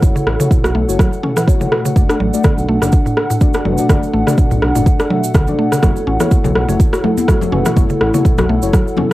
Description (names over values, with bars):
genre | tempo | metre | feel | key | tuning
afro house | 124 BPM | 4/4 | swing 55% on 16ths | F# minor | A4 = 440 Hz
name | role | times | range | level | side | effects
dark analog pad | sustained chords | 0.0-9.1 s | D4 to F#5 | -20 LUFS | right 1 dB | chorus, sidechain pumping, cassette tape
deep mellow chord stab | stabs | 0.0-8.9 s | A3 to E5 | -22 LUFS | left 6 dB | chorus, sidechain pumping, cassette tape, analog delay
smooth synth bass | bass | 0.0-8.7 s | F#1 to B1 | -20 LUFS | equal | sidechain pumping
electronic kick drum | drums | 0.0-8.8 s | none | -13 LUFS | equal | overdrive, cassette tape
cabasa | percussion | 0.0-9.0 s | none | -31 LUFS | right 9 dB | none
mallet-like synth pluck | arpeggios | 0.2-9.1 s | A2 to F#4 | -20 LUFS | equal | chorus, sidechain pumping, cassette tape, analog delay
deep house drum kit | drums | 0.3-9.1 s | rim click, toms | -19 LUFS | equal | overdrive, cassette tape
congas | percussion | 5.8-9.1 s | none | -22 LUFS | left 6 dB | none
room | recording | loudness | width
light reverb | home recording on cassette | -11 LUFS | side -17 dB against mid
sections
0.0-9.1 A section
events
none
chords
0.0 F#m7; 2.0 D/F#; 5.8 F#m7